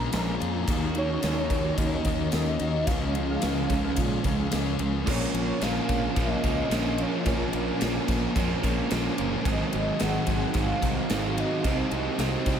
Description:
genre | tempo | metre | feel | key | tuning
rock, shoegaze and dream pop | 110 BPM | 4/4 | straight | Bb minor | A4 = 444 Hz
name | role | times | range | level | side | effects
warm velvety synth lead | melody | 0.0-11.9 s | Db5 to Bb5 | -34 LUFS | equal | chorus, diffuse ambient delay
string machine, full ensemble | sustained chords | 0.0-12.6 s | C4 to Bb5 | -36 LUFS | equal | ensemble chorus
picked plugged-in twelve-string acoustic guitar | arpeggios | 0.0-12.6 s | Eb3 to Gb4 | -39 LUFS | left 6 dB | none
overdriven semi-hollow guitar | riff | 0.0-12.6 s | Ab2 to Gb4 | -30 LUFS | right 7 dB | reverse reverb
thick fuzz guitar | riff | 0.0-12.6 s | Ab2 to Eb4 | -32 LUFS | left 7 dB | distortion, analog chorus
fuzz fingered electric bass | bass | 0.0-12.6 s | Gb1 to Bb2 | -31 LUFS | equal | overdrive
gated 80s drum kit | drums | 0.1-12.6 s | crash cymbal, kick drum, ride cymbal, snare drum | -30 LUFS | equal | none
overdriven semi-hollow guitar | riff | 5.1-12.6 s | Ab2 to C4 | -34 LUFS | equal | none
room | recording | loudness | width
moderate huge ambient reverb, RT60 4.2 s | dreamy mix soaked in reverb | -24 LUFS | side -8 dB against mid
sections
0.0-5.1 A section; 5.1-12.6 B section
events
none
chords
0.0 Bbm7; 0.7 Ebm7; 2.9 Db; 5.1 Bbm7; 9.4 Ab7; 11.6 Cdim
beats
0.12 | 0.67 1.22 1.77 2.32 | 2.87 3.42 3.97 4.52 | 5.07 5.62 6.16 6.71 | 7.26 7.81 8.35 8.90 | 9.45 9.99 10.54 11.09 | 11.64 12.18

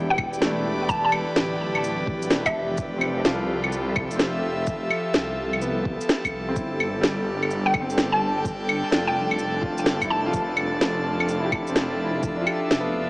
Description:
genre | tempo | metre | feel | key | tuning
future garage | 127 BPM | 4/4 | swing 65% on 16ths | unclear | A4 = 439 Hz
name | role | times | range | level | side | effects
clear upright piano | accompaniment | 0.0-13.1 s | G3 to B4 | -31 LUFS | equal | sidechain pumping, digital delay
airy breathy pad | sustained chords | 0.0-13.1 s | E3 to A5 | -27 LUFS | equal | chorus, sidechain pumping
swelling detuned saw bass | bass | 0.0-13.1 s | D1 to C2 | -30 LUFS | equal | sidechain pumping
mallet-like synth pluck | melody | 0.1-2.8, 7.7-10.4 s | E5 to A5 | -27 LUFS | equal | ensemble chorus, dub echo
electronic claves, shaker and snare drum | drums | 0.2-12.8 s | none | -24 LUFS | equal | overdrive
electronic kick drum | drums | 0.2-12.4 s | none | -31 LUFS | equal | overdrive
room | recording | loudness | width
moderate recital hall reverb, RT60 1.5 s | small speaker sound | -21 LUFS | side -24 dB against mid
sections
0.0-13.1 A section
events
none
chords
0.0 Em7; 2.8 Fmaj9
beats
0.42 | 0.89 1.36 1.84 2.31 | 2.78 3.25 3.73 4.20 | 4.67 5.14 5.62 6.09 | 6.56 7.04 7.51 7.98 | 8.45 8.92 9.40 9.87 | 10.34 10.81 11.29 11.76 | 12.23 12.70

